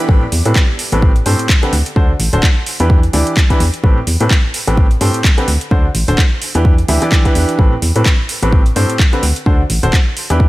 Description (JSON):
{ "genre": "piano house", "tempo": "128 BPM", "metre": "4/4", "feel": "swing 57% on 16ths", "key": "A dorian", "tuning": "A4 = 439 Hz", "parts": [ { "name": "clear grand piano", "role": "riff", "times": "0.0-10.5 s", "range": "A2 to E5", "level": "-18 LUFS", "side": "equal", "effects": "sidechain pumping, digital delay" }, { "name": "solid FM bass", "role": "bass", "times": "0.1-10.5 s", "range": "D1 to A2", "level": "-15 LUFS", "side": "equal", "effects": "tube saturation, sidechain pumping" }, { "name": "electronic kick drum", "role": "drums", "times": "0.1-10.5 s", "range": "none", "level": "-11 LUFS", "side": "equal", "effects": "studio reverb" }, { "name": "garage drum kit", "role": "drums", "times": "0.3-10.4 s", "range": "handclaps, hi-hat", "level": "-19 LUFS", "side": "right 1 dB", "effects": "overdrive, studio reverb" } ], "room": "digital ambience", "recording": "none", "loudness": "-11 LUFS", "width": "side -18 dB against mid", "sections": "0.1-10.5 A section", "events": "none", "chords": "0.1 Am9; 1.7 D7; 2.7 Em7; 3.8 Am9; 5.5 D7; 6.4 Em7; 7.6 Am9; 9.2 D7" }